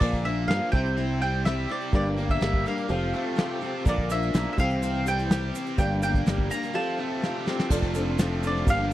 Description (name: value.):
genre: folk rock and heartland rock.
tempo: 125 BPM.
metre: 4/4.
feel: straight.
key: unclear.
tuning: A4 = 441 Hz.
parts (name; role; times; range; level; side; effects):
mandolin; melody; 0.0-8.9 s; D5 to Bb5; -30 LUFS; right 1 dB; none.
clear upright piano; accompaniment; 0.0-8.9 s; F4 to G5; -37 LUFS; right 3 dB; none.
picked steel-string acoustic guitar; accompaniment; 0.0-8.9 s; G2 to Bb4; -32 LUFS; left 4 dB; none.
bright tonewheel organ; sustained chords; 0.0-8.9 s; E3 to C5; -38 LUFS; right 1 dB; none.
biting overdriven guitar; riff; 0.0-8.9 s; F2 to G4; -33 LUFS; right 2 dB; none.
fingered electric bass; bass; 0.0-8.9 s; F1 to G2; -28 LUFS; equal; none.
soft brush drum kit; drums; 0.0-8.9 s; crash cymbal, hi-hat, kick drum, snare drum; -24 LUFS; equal; none.
tube shaker; percussion; 3.9-8.8 s; none; -44 LUFS; right 10 dB; none.
room: small room ambience.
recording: dry, close 1970s-style studio recording.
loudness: -23 LUFS.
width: side -14 dB against mid.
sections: 0.0-7.7 A section; 7.7-8.9 B section.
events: break 6.7-7.7; drum fill 7.2-7.7.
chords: 0.0 Bb; 0.7 C; 1.9 Gm; 2.9 Fadd9; 3.9 Bb; 4.6 C; 5.8 Gm; 6.7 Fadd9; 7.7 F6.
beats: | 0.01 0.49 0.97 1.46 | 1.94 2.42 2.90 3.38 | 3.86 4.34 4.82 5.30 | 5.79 6.27 6.75 7.23 | 7.71 8.19 8.67.